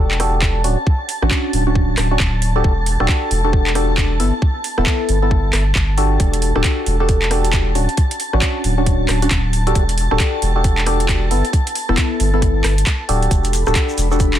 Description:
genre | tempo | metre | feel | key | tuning
UK garage, two-step garage | 135 BPM | 4/4 | swing 61% on 16ths | E dorian | A4 = 440 Hz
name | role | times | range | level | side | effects
soft string machine | sustained chords | 0.0-14.4 s | A5 to B5 | -27 LUFS | equal | ensemble chorus, sidechain pumping
percussive organ stab | stabs | 0.0-14.4 s | B3 to A4 | -21 LUFS | left 1 dB | chorus, phaser, dub echo
saturated sub bass | bass | 0.0-14.4 s | D1 to A1 | -18 LUFS | equal | none
garage drum kit | drums | 0.1-14.4 s | handclaps, hi-hat, rim click | -22 LUFS | right 1 dB | overdrive
electronic kick drum | drums | 0.4-14.3 s | none | -17 LUFS | equal | none
shekere | percussion | 13.3-14.4 s | none | -30 LUFS | left 4 dB | none
room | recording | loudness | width
light reverb | dense, heavily limited modern master | -14 LUFS | side -11 dB against mid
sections
0.0-14.4 A section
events
none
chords
0.0 Em11; 0.6 Dmaj7; 2.6 Em11; 4.2 G69; 6.2 Em11; 7.8 Dmaj7; 9.8 Em11

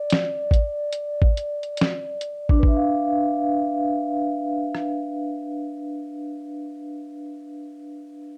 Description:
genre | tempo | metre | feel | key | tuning
lo-fi hip hop | 71 BPM | 4/4 | swing 66% on 16ths | D dorian | A4 = 440 Hz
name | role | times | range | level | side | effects
vibraphone with medium mallets | accompaniment | 0.0-8.4 s | D4 to F5 | -27 LUFS | equal | low-pass filter
lo-fi sampler-style drum kit | drums | 0.1-5.0 s | hi-hat, kick drum, rim click, snare drum | -21 LUFS | equal | none
room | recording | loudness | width
light reverb | dark, warm production | -24 LUFS | mono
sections
0.0-2.6 A section; 2.6-6.0 B section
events
vibraphone solo 0.0-2.6; filter sweep on vibraphone 0.0-2.6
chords
0.0 N.C.; 2.6 Dm69

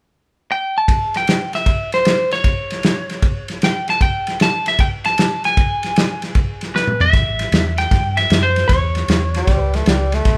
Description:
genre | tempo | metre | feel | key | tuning
electric blues shuffle | 154 BPM | 4/4 | swing 66% on 8ths | A mixolydian | A4 = 436 Hz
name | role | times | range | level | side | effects
lightly driven lead guitar | melody | 0.5-10.1 s | B4 to A5 | -21 LUFS | equal | none
warm soul drum kit | drums | 0.9-10.4 s | kick drum, ride cymbal, snare drum, toms | -20 LUFS | equal | none
vintage muted fingered electric bass | bass | 7.1-10.4 s | A1 to G2 | -22 LUFS | equal | none
breathy tenor saxophone | second line | 9.4-10.4 s | G3 to A3 | -24 LUFS | equal | none
room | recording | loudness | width
light reverb | band playing live in one room | -17 LUFS | mono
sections
0.9-7.1 A section; 7.1-10.4 B section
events
drum fill 6.7-7.1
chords
0.0 N.C.; 7.1 A7

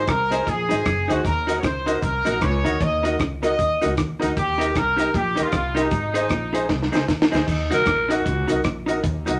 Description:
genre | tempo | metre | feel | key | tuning
ska | 154 BPM | 4/4 | swing 61% on 8ths | Eb dorian | A4 = 440 Hz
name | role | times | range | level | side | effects
warm horn section | melody | 0.0-7.1 s | Eb4 to Eb5 | -26 LUFS | equal | none
hollow-body jazz guitar | accompaniment | 0.0-9.4 s | Eb4 to C5 | -29 LUFS | equal | tape echo
warm upright piano | stabs | 0.0-9.4 s | Eb4 to Eb5 | -30 LUFS | equal | none
semi-hollow electric guitar | riff | 0.1-9.4 s | Gb2 to Eb3 | -34 LUFS | equal | none
upright bass | bass | 0.1-9.4 s | Gb1 to Eb2 | -30 LUFS | equal | none
deep reggae drum kit | drums | 0.1-9.3 s | crash cymbal, hi-hat, kick drum, rim click, snare drum | -27 LUFS | equal | none
cabasa | percussion | 0.1-9.3 s | none | -48 LUFS | equal | none
growling alto saxophone | melody | 7.5-8.7 s | Eb4 to Bb4 | -25 LUFS | equal | none
room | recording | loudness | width
wet studio reverb, RT60 0.6 s | none | -22 LUFS | mono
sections
0.0-7.5 A section; 7.5-9.4 B section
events
drum fill 6.7-7.5; alto saxophone solo 7.5-9.4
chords
0.0 Ab; 1.2 Ebm; 4.4 Eb; 5.9 Ab; 7.5 Ebm

